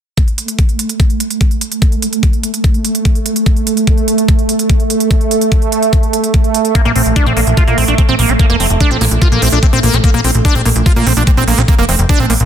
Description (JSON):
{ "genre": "psychedelic trance", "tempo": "146 BPM", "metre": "4/4", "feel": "straight", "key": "unclear", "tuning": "A4 = 441 Hz", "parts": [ { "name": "bubbling stepped-filter texture", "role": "sustained chords", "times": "0.2-12.5 s", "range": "A3", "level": "-17 LUFS", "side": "right 4 dB", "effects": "chorus, built-in reverb, sidechain pumping" }, { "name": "electronic hi-hat", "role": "drums", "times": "0.2-12.5 s", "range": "none", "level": "-20 LUFS", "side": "right 4 dB", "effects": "overdrive" }, { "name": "electronic kick drum", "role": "drums", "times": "0.2-12.2 s", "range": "none", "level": "-11 LUFS", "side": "equal", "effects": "none" }, { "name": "liquid acid bass", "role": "riff", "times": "6.8-12.3 s", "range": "Bb3 to F4", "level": "-15 LUFS", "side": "moving between left 5 dB and right 5 dB", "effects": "chorus, auto-pan, sidechain pumping, dub echo" }, { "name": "plucky analog bass", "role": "bass", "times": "6.9-12.5 s", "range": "F1 to Bb2", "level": "-13 LUFS", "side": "left 1 dB", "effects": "none" } ], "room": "digital ambience", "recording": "dense, heavily limited modern master", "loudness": "-10 LUFS", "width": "side -9 dB against mid", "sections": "0.2-12.5 A section", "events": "none", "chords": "0.2 N.C.; 6.8 Bb5", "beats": "| 0.17 0.59 1.00 1.41 | 1.82 2.23 2.64 3.05 | 3.46 3.87 4.29 4.70 | 5.11 5.52 5.93 6.34 | 6.75 7.16 7.57 7.98 | 8.39 8.80 9.22 9.63 | 10.04 10.45 10.86 11.27 | 11.68 12.09" }